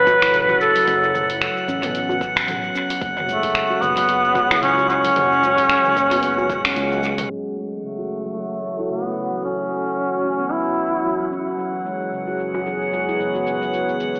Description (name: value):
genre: organic downtempo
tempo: 112 BPM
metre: 4/4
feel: swing 57% on 16ths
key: F# minor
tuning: A4 = 440 Hz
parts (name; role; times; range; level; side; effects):
- clear duduk; melody; 0.0-11.3 s; A3 to B4; -21 LUFS; equal; dub echo
- handpan; arpeggios; 0.0-14.1 s; C#3 to F#4; -28 LUFS; equal; low-pass filter, dub echo
- fretless electric bass; bass; 0.0-7.2 s; F#1 to C#2; -34 LUFS; equal; tube saturation, sidechain pumping
- drifting glass-harmonics texture; texture; 0.0-14.2 s; F#5; -30 LUFS; equal; chorus, built-in reverb
- deep house drum kit; drums; 0.1-14.2 s; cabasa, finger snaps, hi-hat, toms; -28 LUFS; equal; low-pass filter on perc, studio reverb, low-pass filter on toms, low-pass filter on snare, low-pass filter on hats, dub echo
- electronic kick drum; drums; 0.1-6.7 s; none; -34 LUFS; equal; studio reverb
- djembe; percussion; 0.1-7.3, 12.5-14.2 s; none; -34 LUFS; equal; none
- warm analog pad; sustained chords; 7.3-14.2 s; F#2 to C#5; -29 LUFS; equal; chorus, sidechain pumping
room: wet echo chamber reverb, RT60 2.1 s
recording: echo-heavy mix, low-pass filter, telephone sound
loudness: -20 LUFS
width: mono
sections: 0.0-7.3 A section; 7.3-14.2 B section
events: filter sweep on drum 7.3-14.2; filter sweep on handpan 7.3-14.2; filter sweep 7.3-14.2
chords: 0.0 F#m; 3.0 E6/F# (rootless); 7.3 F#m7; 11.6 E6/F#